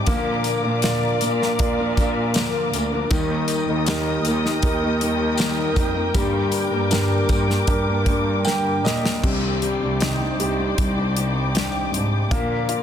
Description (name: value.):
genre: pop ballad.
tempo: 79 BPM.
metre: 4/4.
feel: straight.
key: unclear.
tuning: A4 = 441 Hz.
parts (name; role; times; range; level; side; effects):
warm concert grand piano; accompaniment; 0.0-12.8 s; C3 to G5; -24 LUFS; right 1 dB; none.
muted studio string section; sustained chords; 0.0-12.8 s; Bb4 to Eb6; -28 LUFS; left 2 dB; none.
nylon-string guitar; arpeggios; 0.0-12.8 s; G2 to Bb4; -27 LUFS; left 1 dB; none.
rich studio cello section; bass; 0.0-12.8 s; C2 to Bb2; -25 LUFS; equal; none.
modern studio drum kit; drums; 0.1-12.8 s; crash cymbal, hi-hat, kick drum, snare drum; -24 LUFS; equal; none.
tambourine; percussion; 0.1-9.0 s; none; -36 LUFS; left 7 dB; none.
room: light reverb, small room ambience.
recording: dense, heavily limited modern master.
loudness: -19 LUFS.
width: side -9 dB against mid.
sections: 0.0-9.2 A section; 9.2-12.8 B section.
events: grand piano fill 8.1-9.2; drum fill 8.5-9.2.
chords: 0.1 Bb; 3.1 Eb; 6.1 Gm; 9.2 Cmadd9; 12.3 Bb.